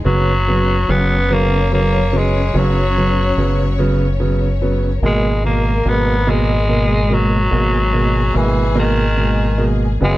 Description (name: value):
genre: six-eight pop ballad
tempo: 48 BPM (dotted quarters)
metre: 6/8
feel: straight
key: G# minor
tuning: A4 = 440 Hz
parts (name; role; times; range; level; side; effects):
- clear grand piano; accompaniment; 0.0-10.2 s; B2 to B3; -19 LUFS; right 2 dB; none
- rich studio string section; sustained chords; 0.0-10.2 s; B2 to C#5; -24 LUFS; left 3 dB; none
- fingered electric bass with an envelope filter; bass; 0.0-10.2 s; F#1 to G#1; -18 LUFS; equal; none
- growling tenor saxophone; melody; 0.1-10.2 s; D#3 to B3; -19 LUFS; equal; none
room: light reverb, studio ambience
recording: dark, warm production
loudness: -13 LUFS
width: side -16 dB against mid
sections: 0.0-10.2 A section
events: none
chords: 0.1 F#sus4; 5.0 G#madd9